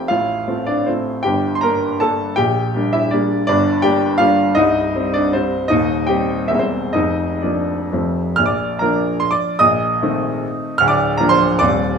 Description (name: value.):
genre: classical, romantic triple-time dance for piano with dotted rhythms.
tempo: 114-175 BPM.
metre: 3/4.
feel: rubato.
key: Bb major from 3.5 s.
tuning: A4 = 440 Hz.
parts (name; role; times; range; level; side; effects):
clear grand piano; solo; 0.0-12.0 s; C1 to F6; -15 LUFS; equal; none.
room: light reverb.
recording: small room reverb.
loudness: -15 LUFS.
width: side -6 dB against mid.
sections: 0.0-8.4 A section; 8.4-12.0 B section.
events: none.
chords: 0.1 F/A; 1.3 Gm; 2.4 Gm/Bb; 3.5 Gm; 4.6 Cm; 5.7 Cm/Eb; 6.5 C7/E; 7.0 Bb/F; 7.9 F; 8.4 Bb; 9.6 Adim/Bb; 10.8 Bb/D.